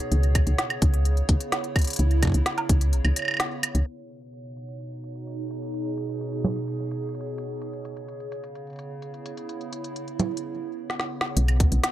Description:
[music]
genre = IDM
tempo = 128 BPM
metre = 4/4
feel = straight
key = C# minor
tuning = A4 = 443 Hz
[part]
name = warbly tape-like pad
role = sustained chords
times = 0.0-11.9 s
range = B2 to C#5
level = -32 LUFS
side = right 2 dB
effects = chorus, built-in reverb, phaser
[part]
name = organic electronic drum kit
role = drums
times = 0.0-11.9 s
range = congas, hi-hat, snare drum, woodblock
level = -27 LUFS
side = right 1 dB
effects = low-pass filter on hats, low-pass filter on perc, low-pass filter on snare, low-pass filter on room
[part]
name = woody FM bass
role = bass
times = 0.1-3.8, 11.4-11.8 s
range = B1 to C#2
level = -21 LUFS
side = equal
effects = none
[part]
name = electronic kick drum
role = drums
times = 0.4-2.8, 11.6-11.7 s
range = none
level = -22 LUFS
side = equal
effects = none
[sound]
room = digital ambience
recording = low-pass filter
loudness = -23 LUFS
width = side -13 dB against mid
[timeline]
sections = 0.0-3.9 A section; 3.9-11.4 B section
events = break 2.9-3.9; filter sweep 3.9-11.4; drum fill 10.9-11.4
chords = 0.1 C#m7; 3.9 B6; 7.6 C#m7; 11.4 N.C.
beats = | 0.12 0.58 1.05 1.52 | 1.99 2.46 2.93 3.40 | 3.87 4.33 4.80 5.27 | 5.74 6.21 6.68 7.15 | 7.62 8.09 8.55 9.02 | 9.49 9.96 10.43 10.90 | 11.37 11.84

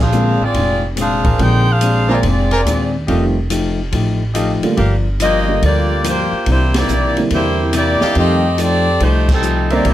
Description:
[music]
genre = jazz, big band swing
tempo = 142 BPM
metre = 4/4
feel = swing 66% on 8ths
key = unclear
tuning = A4 = 438 Hz
[part]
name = edgy saxophone section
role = melody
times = 0.0-9.9 s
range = G3 to G5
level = -17 LUFS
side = equal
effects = none
[part]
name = warm trumpet section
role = stabs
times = 0.0-5.0, 8.0-9.9 s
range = G4 to Ab5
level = -22 LUFS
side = right 1 dB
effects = none
[part]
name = upright bass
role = bass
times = 0.0-9.9 s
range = F1 to F2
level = -17 LUFS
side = equal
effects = none
[part]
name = dark upright piano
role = accompaniment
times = 0.1-9.8 s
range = D3 to A4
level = -20 LUFS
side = right 3 dB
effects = none
[part]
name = hollow-body jazz guitar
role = accompaniment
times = 0.1-9.9 s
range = G2 to G4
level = -22 LUFS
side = left 4 dB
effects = none
[part]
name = open jazz drum kit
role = drums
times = 0.1-9.9 s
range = crash cymbal, hi-hat, kick drum, ride cymbal, snare drum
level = -23 LUFS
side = equal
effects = none
[sound]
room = light reverb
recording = none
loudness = -13 LUFS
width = side -13 dB against mid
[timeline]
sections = 0.0-9.9 A section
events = band accent 6.7, 9.2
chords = 0.0 Bb9; 3.1 F9; 4.8 Gm7; 6.5 C9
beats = 0.12 0.54 0.97 | 1.39 1.81 2.24 2.66 | 3.08 3.51 3.93 4.35 | 4.78 5.20 5.62 6.05 | 6.47 6.89 7.32 7.74 | 8.16 8.59 9.01 9.44 | 9.86

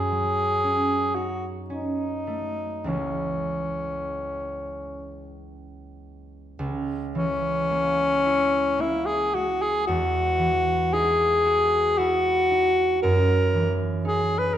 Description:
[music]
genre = classical, impressionist duo for alto saxophone and harp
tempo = 46-59 BPM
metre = 3/4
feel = rubato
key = C# dorian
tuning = A4 = 442 Hz
[part]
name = warm alto saxophone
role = melody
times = 0.0-14.6 s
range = C#4 to B4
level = -22 LUFS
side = left 1 dB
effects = none
[part]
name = concert harp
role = accompaniment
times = 0.0-14.6 s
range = C#2 to F#4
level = -28 LUFS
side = right 2 dB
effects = none
[sound]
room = wet recital hall reverb, RT60 1.6 s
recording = dark, warm production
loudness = -21 LUFS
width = side -10 dB against mid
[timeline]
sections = 0.0-6.6 A section; 6.6-14.6 A section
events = none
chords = 0.0 F#m6; 2.9 C#m6; 9.9 Emaj9; 13.0 F#sus2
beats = 0.64 1.70 | 2.89 4.17 5.42 | 6.60 7.71 8.80 | 9.88 10.93 11.97 | 13.02 14.05

